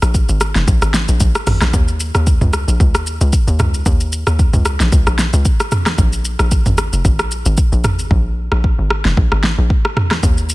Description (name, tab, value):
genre	amapiano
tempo	113 BPM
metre	4/4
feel	swing 55% on 16ths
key	unclear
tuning	A4 = 442 Hz
part	hollow log drum bass	bass	0.0-10.5 s	F1 to Eb2	-16 LUFS	equal	none
part	deep house drum kit	drums	0.0-10.5 s	hi-hat, kick drum, rim click, shaker, snare drum, toms	-14 LUFS	equal	soft clipping on snare
room	digital ambience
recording	dense, heavily limited modern master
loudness	-12 LUFS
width	side -20 dB against mid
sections	0.0-10.5 A section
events	hi-hats muted 8.1-10.2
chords	none